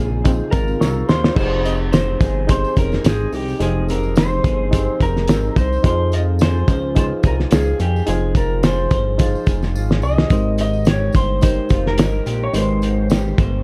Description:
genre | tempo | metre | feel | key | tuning
indie pop, bedroom pop | 107 BPM | 4/4 | swing 55% on 16ths | unclear | A4 = 440 Hz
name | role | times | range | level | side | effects
clean lap steel guitar | melody | 0.0-13.1 s | G4 to Eb5 | -26 LUFS | equal | subtle chorus, analog delay
electric guitar through a small old amp | accompaniment | 0.0-13.6 s | Db3 to C5 | -29 LUFS | equal | lush chorus, warbly pitch drift
reed electric piano | accompaniment | 0.0-13.6 s | C4 to Db6 | -29 LUFS | equal | none
chorused synth bass | bass | 0.0-13.6 s | F1 to F2 | -23 LUFS | equal | none
cloth-damped thuddy drum kit | drums | 0.2-13.5 s | crash cymbal, hi-hat, kick drum, snare drum | -20 LUFS | equal | none
tambourine | percussion | 0.3-13.5 s | none | -47 LUFS | equal | none
room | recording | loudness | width
small room ambience | none | -18 LUFS | mono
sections
0.0-1.4 A section; 1.4-13.6 A section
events
reed electric piano fill 0.5-1.4; drum fill 0.8-1.4, 9.7-10.3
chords
0.0 Dbmaj7; 1.4 Fm7; 5.8 Dbmaj7; 10.3 Abmaj9

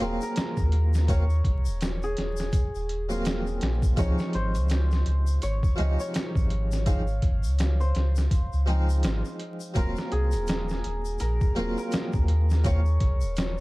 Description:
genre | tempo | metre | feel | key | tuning
trip hop | 83 BPM | 4/4 | swing 59% on 16ths | Eb dorian | A4 = 440 Hz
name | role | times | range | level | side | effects
santur | melody | 0.0-13.6 s | Ab4 to F5 | -35 LUFS | left 1 dB | vintage 12-bit sampler grit, tape echo
harpsichord | accompaniment | 0.0-12.8 s | C3 to F4 | -32 LUFS | equal | tremolo
warm sub bass | bass | 0.0-13.6 s | Eb1 to Eb2 | -24 LUFS | equal | none
trip hop sampler-style drum kit | drums | 0.0-13.6 s | hi-hat, kick drum, snare drum | -27 LUFS | equal | overdrive
tube shaker | percussion | 0.2-13.6 s | none | -47 LUFS | left 6 dB | none
room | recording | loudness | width
small room ambience | dark, warm production, vinyl crackle | -23 LUFS | side -21 dB against mid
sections
0.0-13.6 A section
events
none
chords
0.0 Ebm69; 4.0 Dbmaj9; 9.8 Ebm69

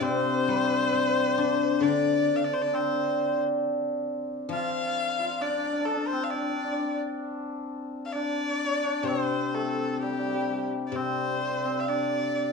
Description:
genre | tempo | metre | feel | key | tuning
chinese traditional, Chinese chamber ensemble | 66 BPM | 4/4 | rubato | unclear | A4 = 437 Hz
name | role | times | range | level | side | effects
bright erhu | melody | 0.0-12.5 s | G4 to F5 | -30 LUFS | left 4 dB | none
hammered dulcimer | second line | 0.0-12.5 s | G3 to F4 | -28 LUFS | right 1 dB | none
guzheng | accompaniment | 0.0-12.5 s | C3 to D4 | -29 LUFS | left 8 dB | none
room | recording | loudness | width
moderate recital hall reverb, RT60 1.6 s | small room ambience | -25 LUFS | side -4 dB against mid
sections
0.0-10.9 A section; 10.9-12.5 B section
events
none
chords
none

